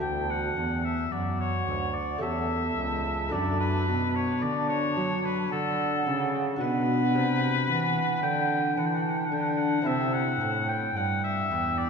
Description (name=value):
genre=classical, baroque-style sonata movement with continuo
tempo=55 BPM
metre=3/4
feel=rubato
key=D major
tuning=A4 = 440 Hz
part: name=clear oboe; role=melody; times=0.0-11.9 s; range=A4 to G5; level=-30 LUFS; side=left 5 dB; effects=none
part: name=mellow baroque flute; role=second line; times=0.0-11.9 s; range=F#5 to A5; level=-32 LUFS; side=right 7 dB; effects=none
part: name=lute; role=accompaniment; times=0.0-11.9 s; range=D2 to G4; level=-31 LUFS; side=left 3 dB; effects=none
part: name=warm cello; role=bass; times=0.0-11.9 s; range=C#2 to F#3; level=-29 LUFS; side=right 1 dB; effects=none
room=wet church reverb, RT60 2.8 s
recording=none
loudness=-25 LUFS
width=side -5 dB against mid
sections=0.0-11.9 A section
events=none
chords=0.0 D; 2.2 A7/E; 3.3 D/F#; 6.6 Bm; 9.9 C